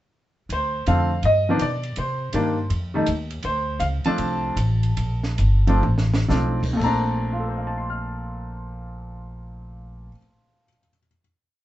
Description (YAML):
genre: jazz piano trio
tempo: 114-164 BPM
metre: 4/4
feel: swing 66% on 8ths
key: Bb major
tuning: A4 = 440 Hz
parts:
  - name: clear baby grand piano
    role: melody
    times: 0.5-11.2 s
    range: Bb2 to F6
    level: -23 LUFS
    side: equal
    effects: none
  - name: upright bass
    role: bass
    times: 0.5-10.1 s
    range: G1 to C3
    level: -24 LUFS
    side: equal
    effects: none
  - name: compact cocktail drum kit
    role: drums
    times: 0.5-7.0 s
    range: crash cymbal, hi-hat, kick drum, ride cymbal, snare drum, toms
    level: -34 LUFS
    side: right 2 dB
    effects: none
room: moderate studio reverb, RT60 0.5 s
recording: band playing live in one room, nothing above 8.0 kHz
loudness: -20 LUFS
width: side -14 dB against mid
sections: 0.5-6.8 A section; 6.8-11.0 final chord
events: slowing down 3.4-6.8; drum fill 5.8-6.3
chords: 0.5 Dm7; 1.2 G(b13); 2.0 Cm7; 2.7 F7(no3); 3.4 Bbmaj9